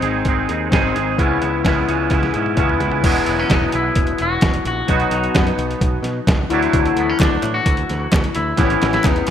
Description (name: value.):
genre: indie rock.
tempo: 130 BPM.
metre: 4/4.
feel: straight.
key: unclear.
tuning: A4 = 441 Hz.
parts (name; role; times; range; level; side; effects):
electric guitar through a small old amp; riff; 0.0-9.3 s; E3 to G#4; -22 LUFS; left 8 dB; none.
twangy electric guitar; riff; 0.0-9.3 s; E2 to G#4; -22 LUFS; right 8 dB; ensemble chorus.
modern bright picked electric bass; bass; 0.0-9.3 s; E1 to B2; -24 LUFS; equal; none.
trip hop sampler-style drum kit; drums; 0.0-9.3 s; crash cymbal, hi-hat, kick drum, snare drum, toms; -19 LUFS; equal; overdrive.
twangy electric guitar; melody; 3.3-9.3 s; B3 to F#4; -23 LUFS; left 1 dB; slapback echo.
group handclap; percussion; 7.2-9.3 s; none; -32 LUFS; left 3 dB; none.
room: light reverb.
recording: rough home demo mix.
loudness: -15 LUFS.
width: side -9 dB against mid.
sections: 0.0-3.0 A section; 3.0-9.3 B section.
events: drum fill 2.1-3.0, 8.6-9.3.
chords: 0.0 G#; 1.2 C#m7; 3.0 Eadd9; 4.9 B; 6.5 Dadd9; 8.6 Aadd9.